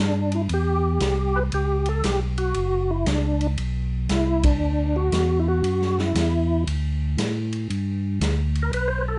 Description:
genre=soul jazz organ trio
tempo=117 BPM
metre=4/4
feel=swing 66% on 8ths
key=unclear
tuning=A4 = 442 Hz
part: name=percussive tonewheel organ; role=melody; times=0.0-9.2 s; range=D4 to C5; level=-27 LUFS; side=equal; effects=slow rotary speaker, overdrive, chorus vibrato
part: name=tonewheel organ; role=bass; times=0.0-9.2 s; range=F#1 to A2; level=-26 LUFS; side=equal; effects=slow rotary speaker
part: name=swinging big-band drum kit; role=drums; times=0.3-8.9 s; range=hi-hat, kick drum, ride cymbal, snare drum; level=-31 LUFS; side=equal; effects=none
room=light reverb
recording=nothing above 10.7 kHz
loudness=-23 LUFS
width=mono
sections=0.0-7.7 A section; 7.7-9.2 B section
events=band accent 4.4; tonewheel organ solo 7.7-9.2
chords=0.0 Am7 (rootless); 1.5 A13; 2.6 F#5; 3.6 Bm; 5.6 Esus2; 6.7 D5; 7.7 G

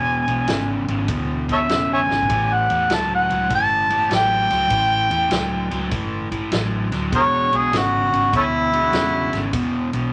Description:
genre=electric blues shuffle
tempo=100 BPM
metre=4/4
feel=swing 67% on 8ths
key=E mixolydian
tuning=A4 = 439 Hz
part: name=warm harmonica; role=melody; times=0.0-9.5 s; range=A3 to A5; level=-21 LUFS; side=equal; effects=overdrive
part: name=crunchy overdriven guitar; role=riff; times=0.0-10.1 s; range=E2 to F#3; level=-27 LUFS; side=equal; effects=none
part: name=vintage muted fingered electric bass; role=bass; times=0.0-10.1 s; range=E1 to E2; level=-30 LUFS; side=equal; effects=none
part: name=vintage drum kit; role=drums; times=0.3-10.0 s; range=kick drum, ride cymbal, snare drum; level=-30 LUFS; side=equal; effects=none
part: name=warm horn section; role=stabs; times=2.3-9.4 s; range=G#3 to G4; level=-34 LUFS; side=equal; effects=none
room=moderate club reverb, RT60 0.8 s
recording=none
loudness=-20 LUFS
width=mono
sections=0.0-10.1 A section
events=harmonica solo 0.0-10.1; drum fill 2.0-2.3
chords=0.0 E7; 2.3 A9; 7.1 E9

